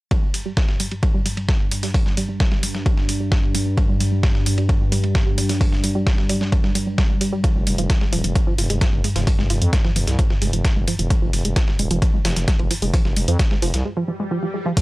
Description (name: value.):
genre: driving peak-time techno.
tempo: 131 BPM.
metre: 4/4.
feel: straight.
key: unclear.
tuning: A4 = 436 Hz.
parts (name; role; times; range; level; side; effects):
tight sequenced synth; riff; 0.1-14.8 s; F3 to Ab3; -27 LUFS; right 2 dB; chorus, sidechain pumping, tape echo.
analog drone; drone; 0.8-13.9 s; G2; -25 LUFS; equal; chorus, sidechain pumping.
dusty soul sampler-style drum kit; drums; 0.1-13.8 s; hi-hat, ride cymbal, snare drum; -32 LUFS; equal; sidechain pumping on cymbals, high-pass filter on cymbals, high-pass filter on snare, sidechain pumping on hats, high-pass filter on hats.
electronic kick drum; drums; 0.1-14.8 s; none; -19 LUFS; equal; overdrive.
punchy analog drum machine; drums; 0.3-14.8 s; crash cymbal, hi-hat; -26 LUFS; equal; overdrive, sidechain pumping on hats, sidechain pumping on cymbals.
growling FM bass; bass; 7.6-13.8 s; Eb1 to F2; -22 LUFS; equal; sidechain pumping.
swell; sound effects; 14.0-14.8 s; none; -29 LUFS; equal; none.
room: little or no reverb.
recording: dry, gritty hardware recording, cassette tape.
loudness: -17 LUFS.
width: side -19 dB against mid.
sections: 0.1-14.8 A section.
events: filter sweep on synth arpeggio sound 0.1-14.8; break 13.9-14.8; swell 14.0-14.8.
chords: 0.1 N.C.; 7.4 Fm.